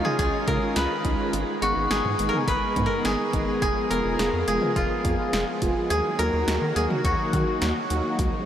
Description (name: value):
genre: synth-pop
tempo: 105 BPM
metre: 4/4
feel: straight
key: Eb minor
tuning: A4 = 440 Hz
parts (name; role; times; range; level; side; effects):
- koto; melody; 0.0-8.5 s; Eb4 to Cb5; -26 LUFS; left 1 dB; tape echo
- mellow synth brass; accompaniment; 0.0-8.2 s; Gb3 to Ab4; -29 LUFS; right 1 dB; chorus
- string machine, violas; sustained chords; 0.0-8.5 s; Db3 to Ab4; -30 LUFS; equal; ensemble chorus
- deep house drum kit; drums; 0.0-8.3 s; hi-hat, kick drum, snare drum, toms; -29 LUFS; equal; overdrive
- rubbery square bass; bass; 0.2-8.3 s; F1 to Eb3; -29 LUFS; equal; none
room: wet huge ambient reverb, RT60 7.3 s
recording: dreamy mix soaked in reverb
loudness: -22 LUFS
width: side -10 dB against mid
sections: 0.0-8.5 A section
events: none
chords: 0.0 Dbadd9; 1.3 Abm; 3.6 Fdim; 5.9 Ebm